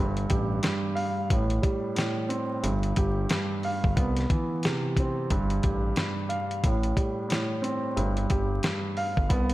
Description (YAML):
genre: hip hop, boom-bap hip-hop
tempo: 90 BPM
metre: 4/4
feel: swing 62% on 16ths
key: unclear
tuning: A4 = 440 Hz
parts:
  - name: dark baby grand piano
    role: accompaniment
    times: 0.0-9.5 s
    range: G2 to F5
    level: -28 LUFS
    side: right 1 dB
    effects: cassette tape, high-pass filter, low-pass filter
  - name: smooth synth bass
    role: bass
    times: 0.0-9.5 s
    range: G1 to C2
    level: -28 LUFS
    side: equal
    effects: none
  - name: dusty soul sampler-style drum kit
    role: drums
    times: 0.2-9.5 s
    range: hi-hat, kick drum, snare drum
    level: -28 LUFS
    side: equal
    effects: none
room: moderate lush hall reverb, RT60 2.0 s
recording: dreamy mix soaked in reverb, vinyl crackle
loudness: -25 LUFS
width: side -16 dB against mid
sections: 0.0-9.5 A section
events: none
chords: 0.0 Fadd9/G; 1.3 Am7; 2.6 Fsus2/G; 4.0 Cmaj7; 5.3 Fadd9/G; 6.6 Am7; 8.0 Fsus2/G